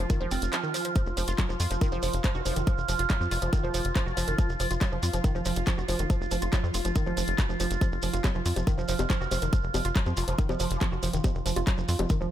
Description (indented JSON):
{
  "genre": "psychedelic trance",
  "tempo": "140 BPM",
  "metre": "4/4",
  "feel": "straight",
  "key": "unclear",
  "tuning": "A4 = 439 Hz",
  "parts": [
    { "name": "overtone-sweeping drone", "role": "sustained chords", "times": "0.0-12.3 s", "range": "F4", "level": "-34 LUFS", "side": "right 2 dB", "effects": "chorus, built-in reverb, phaser, sidechain pumping" },
    { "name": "woody wave-folded pluck", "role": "riff", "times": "0.0-12.3 s", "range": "Eb3 to Gb4", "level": "-33 LUFS", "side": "moving between equal and right 6 dB", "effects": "chorus, auto-pan, sidechain pumping, digital delay" },
    { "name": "tight sequencer bass", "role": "bass", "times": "0.0-12.3 s", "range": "F1 to F2", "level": "-30 LUFS", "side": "equal", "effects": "none" },
    { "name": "electronic kick drum", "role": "drums", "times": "0.1-12.2 s", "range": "none", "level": "-25 LUFS", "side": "equal", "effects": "none" },
    { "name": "garage drum kit", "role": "drums", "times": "0.1-12.2 s", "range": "bongos, handclaps, hi-hat", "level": "-34 LUFS", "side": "left 2 dB", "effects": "none" },
    { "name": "shekere", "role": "percussion", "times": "0.1-12.3 s", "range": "none", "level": "-40 LUFS", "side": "right 5 dB", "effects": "none" },
    { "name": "vowel-sweep wobble bass", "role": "second line", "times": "2.3-4.5, 9.2-10.9 s", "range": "F3 to C4", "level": "-44 LUFS", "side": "left 3 dB", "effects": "none" }
  ],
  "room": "digital ambience",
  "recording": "none",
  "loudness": "-25 LUFS",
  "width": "side -12 dB against mid",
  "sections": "0.0-12.3 A section",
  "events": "none",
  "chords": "0.0 F5"
}